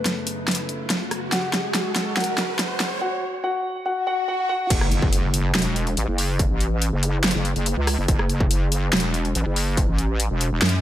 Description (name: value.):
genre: heavy wobble dubstep.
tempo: 142 BPM.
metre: 4/4.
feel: half-time.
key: F# minor.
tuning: A4 = 441 Hz.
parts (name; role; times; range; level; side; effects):
dark concert grand piano; melody; 0.0-4.7 s; B3 to F#5; -27 LUFS; left 2 dB; digital delay.
supersaw pad; sustained chords; 0.0-3.0 s; F#2 to F#4; -32 LUFS; equal; sidechain pumping, low-pass filter.
riser, swell and impact; sound effects; 0.0-6.4 s; none; -31 LUFS; right 1 dB; none.
dubstep drum kit; drums; 0.1-10.8 s; crash cymbal, hi-hat, rim click, snare drum; -24 LUFS; equal; none.
wobble bass; bass; 4.7-10.8 s; E1 to F#2; -22 LUFS; equal; chorus, overdrive.
electronic kick drum; drums; 4.7-9.9 s; none; -22 LUFS; equal; distortion.
room: light reverb.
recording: high-pass filter.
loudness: -20 LUFS.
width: side -12 dB against mid.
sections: 0.0-4.7 A section; 4.7-10.8 B section.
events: build-up 0.0-4.7; drum fill 0.0-3.0; riser 0.0-3.0; filter sweep on supersaw synth 0.0-4.7; filter sweep 0.0-4.7; swell 4.0-4.7; drop 4.7-10.8; impact 4.7-6.4.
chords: 0.0 F#m; 1.3 C#sus4; 3.0 N.C.; 4.7 F#5.